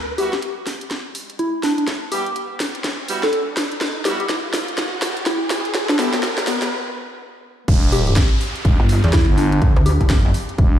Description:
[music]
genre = bass house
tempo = 124 BPM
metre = 4/4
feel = swing 61% on 16ths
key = E minor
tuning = A4 = 440 Hz
[part]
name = riser and downlifter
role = sound effects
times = 0.0-10.8 s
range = none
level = -29 LUFS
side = equal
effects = none
[part]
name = soft struck synth lead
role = melody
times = 0.2-10.1 s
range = B3 to A4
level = -24 LUFS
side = left 1 dB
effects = chorus, phaser, tape echo
[part]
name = clear horn section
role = stabs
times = 0.2-6.1 s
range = G3 to G4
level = -29 LUFS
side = right 2 dB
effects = sidechain pumping, tape echo
[part]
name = garage drum kit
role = drums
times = 0.2-10.7 s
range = crash cymbal, hi-hat, snare drum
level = -24 LUFS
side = equal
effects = overdrive, small room reverb
[part]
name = growling FM bass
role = bass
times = 7.7-10.8 s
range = E1 to G1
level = -18 LUFS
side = equal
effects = overdrive, sidechain pumping
[part]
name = electronic kick drum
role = drums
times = 7.7-10.7 s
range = none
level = -15 LUFS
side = equal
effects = small room reverb
[part]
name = pulsing pluck wobble bass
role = bass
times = 8.8-10.3 s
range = F#1 to E2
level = -16 LUFS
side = equal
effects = chorus, tube saturation, sidechain pumping
[sound]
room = moderate lush hall reverb, RT60 1.9 s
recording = played on a big sound system in a bare room, large studio reverb, high-pass filter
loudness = -17 LUFS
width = side -11 dB against mid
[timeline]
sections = 0.0-7.7 A section; 7.7-10.8 B section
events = build-up 0.0-7.7; drum fill 0.0-6.7; riser 0.0-6.7; break 6.7-7.7; drop 7.7-10.8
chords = 0.0 Emadd9

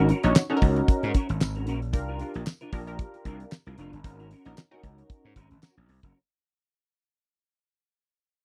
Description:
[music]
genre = early-eighties boogie funk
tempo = 114 BPM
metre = 4/4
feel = swing 56% on 16ths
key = unclear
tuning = A4 = 440 Hz
[part]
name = funky polysynth comp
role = accompaniment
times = 0.0-5.3 s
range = Db4 to Db5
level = -32 LUFS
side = equal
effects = chorus
[part]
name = semi-hollow electric guitar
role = riff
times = 0.0-6.2 s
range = Db4 to Bb4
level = -34 LUFS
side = equal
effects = ensemble chorus
[part]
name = gritty slap bass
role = bass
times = 0.0-6.1 s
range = F1 to Ab2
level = -30 LUFS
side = equal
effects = overdrive
[part]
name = damped 70s drum kit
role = drums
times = 0.1-6.1 s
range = handclaps, hi-hat, kick drum, snare drum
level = -25 LUFS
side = equal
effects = none
[part]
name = tambourine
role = percussion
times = 0.4-5.8 s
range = none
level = -45 LUFS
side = equal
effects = none
[sound]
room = little or no reverb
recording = dry, close 1970s-style studio recording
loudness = -26 LUFS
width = mono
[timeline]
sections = 0.0-6.1 A section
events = fade-out 0.0-6.1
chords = 0.0 Ab9sus4; 1.9 C9sus4; 4.0 Ab9sus4

